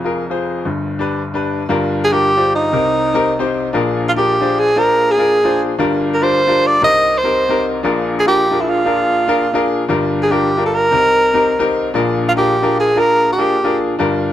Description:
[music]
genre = soul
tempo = 117 BPM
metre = 4/4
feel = swing 65% on 8ths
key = unclear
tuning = A4 = 439 Hz
[part]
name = clear baby grand piano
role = accompaniment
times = 0.0-14.3 s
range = F1 to C5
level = -16 LUFS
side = left 2 dB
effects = none
[part]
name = breathy tenor saxophone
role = melody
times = 2.0-13.8 s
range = Eb4 to Eb5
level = -14 LUFS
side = right 1 dB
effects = none
[sound]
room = light reverb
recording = none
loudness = -13 LUFS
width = side -12 dB against mid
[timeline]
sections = 0.0-1.7 A section; 1.7-14.3 B section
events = none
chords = 0.0 Fm; 0.7 G; 1.7 Gm7; 2.7 Cm7; 3.7 Bb7; 5.8 Gm7; 6.8 Cm7; 7.8 Bb7; 9.9 Gm7; 10.9 Cm7; 11.9 Bb7

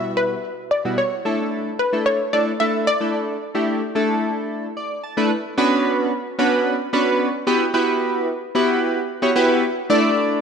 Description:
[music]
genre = pop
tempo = 111 BPM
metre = 4/4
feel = straight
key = unclear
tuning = A4 = 440 Hz
[part]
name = wide unison pluck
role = melody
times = 0.0-4.7 s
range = B4 to E5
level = -21 LUFS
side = equal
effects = none
[part]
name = chorused retro synth keys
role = accompaniment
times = 0.0-10.4 s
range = B2 to A5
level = -19 LUFS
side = equal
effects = none
[sound]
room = wet lush hall reverb, RT60 2.5 s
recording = worn, warbling old tape, cassette tape, warbly pitch drift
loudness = -18 LUFS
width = side -6 dB against mid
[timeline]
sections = 0.0-5.3 A section; 5.3-10.4 B section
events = synth keys fill 4.5-5.3; drop 5.3-10.4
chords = 0.0 Emadd9/B; 1.0 Asus4; 5.3 Bmadd9; 7.5 Emadd9/B; 9.6 Asus4

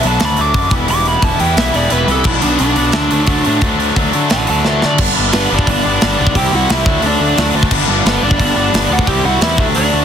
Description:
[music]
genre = punk rock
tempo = 176 BPM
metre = 4/4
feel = straight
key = unclear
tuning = A4 = 437 Hz
[part]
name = biting lead guitar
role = melody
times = 0.0-10.0 s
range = B3 to D6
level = -18 LUFS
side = right 2 dB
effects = overdrive, ping-pong delay
[part]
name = biting overdriven guitar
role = riff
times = 0.0-10.0 s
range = G2 to E4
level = -16 LUFS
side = left 1 dB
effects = none
[part]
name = fuzz picked electric bass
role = bass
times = 0.0-10.0 s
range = E1 to D3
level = -18 LUFS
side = equal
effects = overdrive
[part]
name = tight metal drum kit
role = drums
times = 0.0-9.8 s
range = crash cymbal, hi-hat, kick drum, snare drum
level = -17 LUFS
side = equal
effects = none
[sound]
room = little or no reverb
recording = dense, heavily limited modern master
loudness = -11 LUFS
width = side -8 dB against mid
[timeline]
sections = 0.0-5.0 A section; 5.0-10.0 B section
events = half time 0.0-5.0; lead electric guitar solo 0.0-5.0; drum fill 4.6-5.0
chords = 0.2 D; 0.7 Em; 2.3 Bm; 2.9 D; 5.0 G; 6.3 C; 6.9 D; 7.7 G; 9.1 C

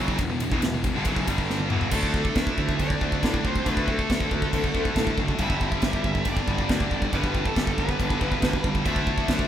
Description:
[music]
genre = heavy metal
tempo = 139 BPM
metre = 4/4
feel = straight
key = unclear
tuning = A4 = 440 Hz
[part]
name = distorted electric guitar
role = riff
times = 0.0-9.5 s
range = E2 to D4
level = -34 LUFS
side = equal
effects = none
[part]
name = heavy high-gain guitar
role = riff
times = 0.0-9.5 s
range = E2 to D4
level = -30 LUFS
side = left 7 dB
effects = distortion
[part]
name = high-gain distorted guitar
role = riff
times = 0.0-9.5 s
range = E2 to D4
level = -31 LUFS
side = right 7 dB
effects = distortion
[part]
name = fuzz picked electric bass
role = bass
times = 0.0-9.4 s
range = E1 to A2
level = -30 LUFS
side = equal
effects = overdrive
[part]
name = modern studio drum kit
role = drums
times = 0.1-9.5 s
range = crash cymbal, kick drum, ride cymbal, snare drum, toms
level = -26 LUFS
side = equal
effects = none
[part]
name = high-gain lead guitar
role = melody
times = 1.9-9.5 s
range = A4 to E5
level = -32 LUFS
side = left 1 dB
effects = distortion
[part]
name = high-gain lead guitar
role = second line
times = 1.9-9.5 s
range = A3 to E4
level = -37 LUFS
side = right 5 dB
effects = none
[sound]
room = light reverb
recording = band playing live in one room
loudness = -22 LUFS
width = side -10 dB against mid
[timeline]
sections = 0.0-1.9 A section; 1.9-9.5 B section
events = drum fill 1.5-1.9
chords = 0.0 Em; 1.3 G5; 1.7 E5; 1.9 D5; 5.4 G; 8.8 D5

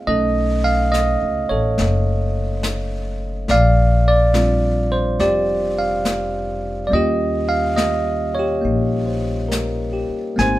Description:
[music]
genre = jazz ballad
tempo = 70 BPM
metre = 4/4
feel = swing 67% on 8ths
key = unclear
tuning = A4 = 440 Hz
[part]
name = bell-like tine electric piano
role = accompaniment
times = 0.0-10.6 s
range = G3 to Ab5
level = -18 LUFS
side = right 1 dB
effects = none
[part]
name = upright bass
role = bass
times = 0.1-10.6 s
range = F1 to Eb2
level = -21 LUFS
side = left 1 dB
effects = none
[part]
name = vintage brush drum kit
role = drums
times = 0.1-10.6 s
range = brushed snare drum, hi-hat, snare drum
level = -27 LUFS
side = left 2 dB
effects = none
[sound]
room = light reverb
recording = minimal, uncompressed stereo recording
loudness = -16 LUFS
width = side -15 dB against mid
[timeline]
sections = 0.0-10.6 A section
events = none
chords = 0.1 B9; 3.5 Bb6; 6.9 Eb7

